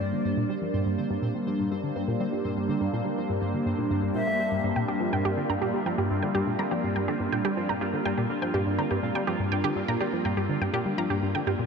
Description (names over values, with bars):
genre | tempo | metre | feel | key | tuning
ambient, sequencer-driven space music | 123 BPM | 4/4 | straight | G minor | A4 = 440 Hz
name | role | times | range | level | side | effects
bright wooden flute | melody | 0.0-0.2, 4.2-4.6 s | D5 to E5 | -36 LUFS | left 1 dB | tape echo
phased analog pad | sustained chords | 0.0-11.7 s | G3 to D4 | -29 LUFS | equal | phaser, chorus
tight sequenced synth | riff | 0.0-11.7 s | G2 to Bb3 | -30 LUFS | equal | chorus, tape echo
pulsing gated texture | texture | 0.0-11.7 s | C4 to C5 | -37 LUFS | equal | chorus, built-in reverb
wide unison pluck | arpeggios | 4.8-11.6 s | G4 to Bb5 | -31 LUFS | moving between left 2 dB and right 7 dB | auto-pan, tape echo
room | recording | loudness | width
moderate huge ambient reverb, RT60 8.2 s | none | -25 LUFS | side -6 dB against mid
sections
0.0-11.7 A section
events
fade-in on synth texture 0.0-11.7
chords
0.0 Gm